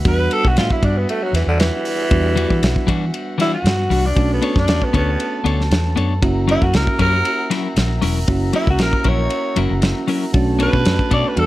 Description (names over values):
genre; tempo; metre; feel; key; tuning
straight-eighth soul blues; 117 BPM; 4/4; straight; B minor; A4 = 440 Hz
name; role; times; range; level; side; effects
dark horn section; sustained chords; 0.0-11.5 s; G3 to A#5; -30 LUFS; equal; none
growling tenor saxophone; melody; 0.1-11.5 s; D3 to D5; -20 LUFS; equal; none
mellow reed electric piano; accompaniment; 0.1-11.5 s; G3 to F#4; -24 LUFS; right 2 dB; none
vintage muted fingered electric bass; bass; 0.1-11.5 s; E1 to E3; -19 LUFS; equal; none
warm soul drum kit; drums; 0.1-11.5 s; hi-hat, kick drum, ride cymbal, snare drum; -21 LUFS; equal; none
clean electric guitar; stabs; 2.4-11.3 s; E3 to C#5; -22 LUFS; left 5 dB; none
room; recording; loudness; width
light reverb; none; -15 LUFS; side -16 dB against mid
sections
0.0-11.5 A section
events
tenor saxophone solo 0.0-11.5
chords
0.0 Em9; 4.2 Bm9; 6.2 F#7; 10.3 Bm9